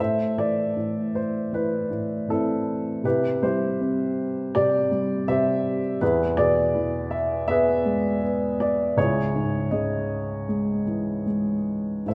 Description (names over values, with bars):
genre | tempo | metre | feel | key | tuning
classical, lyrical solo piano | 80 BPM | 4/4 | uneven beats, rubato | unclear | A4 = 440 Hz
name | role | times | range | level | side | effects
dark upright piano | solo | 0.0-12.1 s | C#2 to E5 | -24 LUFS | equal | none
room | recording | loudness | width
wet concert hall reverb, RT60 2.2 s | none | -24 LUFS | mono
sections
0.0-12.1 A section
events
none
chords
0.0 Am; 3.0 C; 6.0 E; 9.0 C#madd9